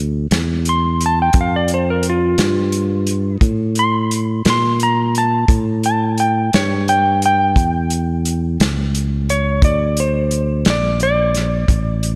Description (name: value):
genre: slow blues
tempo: 58 BPM (dotted quarters)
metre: 12/8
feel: straight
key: D minor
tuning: A4 = 443 Hz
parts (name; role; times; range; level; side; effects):
- modern bright fingered electric bass; bass; 0.0-12.2 s; A1 to Bb2; -20 LUFS; equal; none
- warm soul drum kit; drums; 0.3-12.2 s; hi-hat, kick drum, snare drum; -21 LUFS; equal; none
- clean lap steel guitar; second line; 0.7-12.2 s; F4 to C6; -20 LUFS; equal; none
room: moderate lush hall reverb, RT60 2.5 s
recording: big arena sound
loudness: -17 LUFS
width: mono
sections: 0.0-12.2 A section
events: electric slide guitar solo 0.0-12.2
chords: 0.0 D5; 1.4 Bb5; 5.5 A7; 9.6 D5